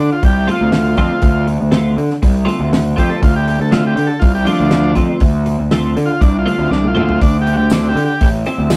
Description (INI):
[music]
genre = psychedelic rock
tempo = 120 BPM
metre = 4/4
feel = straight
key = D minor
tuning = A4 = 440 Hz
[part]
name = combo organ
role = melody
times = 0.0-8.3 s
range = F3 to A4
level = -21 LUFS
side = equal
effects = none
[part]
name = twelve-string electric guitar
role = riff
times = 0.0-8.8 s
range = D3 to C5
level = -24 LUFS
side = equal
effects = rotary speaker
[part]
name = fuzz picked electric bass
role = bass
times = 0.0-8.8 s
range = A1 to D3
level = -18 LUFS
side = equal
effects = overdrive
[part]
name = damped 70s drum kit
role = drums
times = 0.2-8.8 s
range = hi-hat, kick drum, snare drum, toms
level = -17 LUFS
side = equal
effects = none
[part]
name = tambourine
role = percussion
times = 7.7-8.8 s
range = none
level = -34 LUFS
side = equal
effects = none
[sound]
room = moderate small room reverb, RT60 0.5 s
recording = rough rehearsal-room recording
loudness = -14 LUFS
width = mono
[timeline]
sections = 0.0-8.8 A section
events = transistor combo organ solo 0.0-8.8; drum fill 6.7-7.2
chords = 0.0 Dm7; 7.2 C